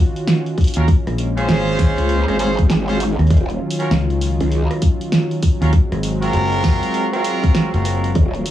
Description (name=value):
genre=glitch hop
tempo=99 BPM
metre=4/4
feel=swing 63% on 16ths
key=Eb dorian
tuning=A4 = 440 Hz
part: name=warm analog pad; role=sustained chords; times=0.0-8.5 s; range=Eb3 to Gb4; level=-24 LUFS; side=left 1 dB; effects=wide subtle chorus, sidechain pumping
part: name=pop drum kit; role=drums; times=0.2-8.5 s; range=hi-hat, rim click, snare drum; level=-22 LUFS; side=right 2 dB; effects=none
part: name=electronic kick drum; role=drums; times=0.6-8.3 s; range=none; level=-15 LUFS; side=left 1 dB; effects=none
part: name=clear horn section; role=stabs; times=0.8-8.1 s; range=C4 to C5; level=-22 LUFS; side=right 2 dB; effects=sidechain pumping, analog delay
part: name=fingered electric bass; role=bass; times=0.8-8.1 s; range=Gb1 to Eb2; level=-18 LUFS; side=equal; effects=none
part: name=growl bass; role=bass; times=2.0-8.4 s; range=Eb1 to Db2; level=-19 LUFS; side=equal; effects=chorus, tube saturation
room=little or no reverb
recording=dry, gritty hardware recording, cassette tape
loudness=-15 LUFS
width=side -12 dB against mid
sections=0.0-8.5 A section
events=none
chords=0.0 Ebm9; 0.9 Bbm9; 3.3 Ebm9; 5.7 Ab13